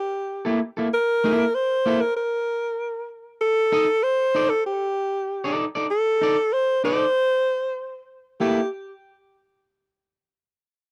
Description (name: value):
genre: funk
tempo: 96 BPM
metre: 4/4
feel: straight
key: unclear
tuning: A4 = 441 Hz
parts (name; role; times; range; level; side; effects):
- breathy alto saxophone; melody; 0.0-8.7 s; G4 to C5; -24 LUFS; equal; tape echo
- electric guitar at the edge of break-up; accompaniment; 0.5-8.6 s; Bb3 to Eb5; -25 LUFS; equal; none
room: little or no reverb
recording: dry, close 1970s-style studio recording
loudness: -23 LUFS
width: mono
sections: 0.0-8.4 A section; 8.4-10.9 B section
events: none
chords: 0.0 C7/Bb (rootless); 3.4 Ebmaj7(b5, no3); 8.4 Gm69/Bb (rootless)